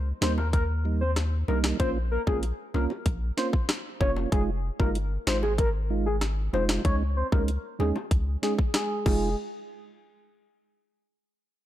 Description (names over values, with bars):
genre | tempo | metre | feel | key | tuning
dancehall | 95 BPM | 4/4 | straight | F minor | A4 = 440 Hz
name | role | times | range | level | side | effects
punchy sub bass | bass | 0.0-9.4 s | F1 to Eb2 | -28 LUFS | equal | none
soft octave-layered synth lead | melody | 0.2-9.4 s | Ab4 to Db5 | -31 LUFS | left 2 dB | chorus, low-pass filter, ping-pong delay
mellow tonewheel organ | accompaniment | 0.2-9.3 s | G3 to F4 | -33 LUFS | right 6 dB | slow rotary speaker, low-pass filter
island pop drum kit | drums | 0.2-9.2 s | crash cymbal, hi-hat, kick drum, rim click, snare drum | -26 LUFS | equal | overdrive
bongos | percussion | 0.2-9.4 s | none | -40 LUFS | left 6 dB | none
room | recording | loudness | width
digital ambience | dark, warm production | -24 LUFS | side -13 dB against mid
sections
0.0-9.4 A section; 9.4-11.7 B section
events
filter sweep 0.0-9.4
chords
0.0 Eb; 1.8 Bbm; 4.3 Fm7; 6.8 Dbsus2; 9.1 Fm7; 9.4 N.C.